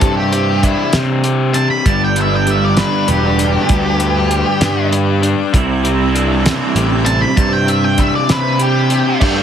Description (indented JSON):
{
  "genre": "indie rock",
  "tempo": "65 BPM (dotted quarters)",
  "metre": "6/8",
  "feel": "straight",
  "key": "unclear",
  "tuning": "A4 = 441 Hz",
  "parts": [
    { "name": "octave-fuzz lead guitar", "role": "melody", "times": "0.0-9.2 s", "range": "E4 to B5", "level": "-18 LUFS", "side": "equal", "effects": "distortion, digital delay" },
    { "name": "biting overdriven guitar", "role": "riff", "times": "0.0-9.4 s", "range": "G2 to G4", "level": "-20 LUFS", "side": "right 9 dB", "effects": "ensemble chorus, digital delay" },
    { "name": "crunchy overdriven guitar", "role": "riff", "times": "0.0-9.4 s", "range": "C3 to D5", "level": "-19 LUFS", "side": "left 10 dB", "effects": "none" },
    { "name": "fuzz picked electric bass", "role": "bass", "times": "0.0-9.4 s", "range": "E1 to C3", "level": "-17 LUFS", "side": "right 1 dB", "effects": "overdrive" },
    { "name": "cloth-damped thuddy drum kit", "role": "drums", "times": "0.0-9.4 s", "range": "crash cymbal, hi-hat, kick drum, snare drum", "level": "-17 LUFS", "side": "equal", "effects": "none" },
    { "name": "string machine, full ensemble", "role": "sustained chords", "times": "1.8-9.4 s", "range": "C4 to D6", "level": "-28 LUFS", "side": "right 1 dB", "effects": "none" }
  ],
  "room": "light reverb",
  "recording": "heavily compressed radio sound, multiband compression",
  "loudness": "-12 LUFS",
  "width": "side -8 dB against mid",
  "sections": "0.0-9.2 A section",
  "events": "lead electric guitar solo 0.0-9.2",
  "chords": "0.0 Cadd9; 1.9 Gadd9; 5.5 Cadd9"
}